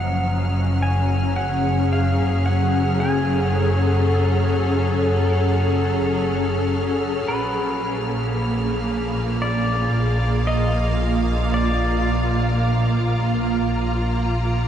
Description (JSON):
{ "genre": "ambient", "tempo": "56 BPM", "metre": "4/4", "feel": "straight", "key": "unclear", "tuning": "A4 = 439 Hz", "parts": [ { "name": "pedal steel guitar", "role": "melody", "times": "0.0-14.7 s", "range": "Cb5 to Ab5", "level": "-28 LUFS", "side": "left 1 dB", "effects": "none" }, { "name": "evolving wavetable pad", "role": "sustained chords", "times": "0.0-14.7 s", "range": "F3 to Bb5", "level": "-22 LUFS", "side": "equal", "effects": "ensemble chorus, built-in reverb" }, { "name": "clear studio double bass section", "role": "bass", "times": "0.0-14.7 s", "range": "Gb1 to Bb1", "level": "-21 LUFS", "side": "equal", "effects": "none" }, { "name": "clear chamber violin section", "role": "texture", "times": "0.0-14.7 s", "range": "F6", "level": "-35 LUFS", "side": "left 1 dB", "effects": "none" } ], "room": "wet shimmer reverb, RT60 8.5 s", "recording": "cassette tape", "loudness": "-18 LUFS", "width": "side -9 dB against mid", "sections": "0.0-14.7 A section", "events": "none", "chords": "0.0 Gbmadd9; 7.3 Bb7b9" }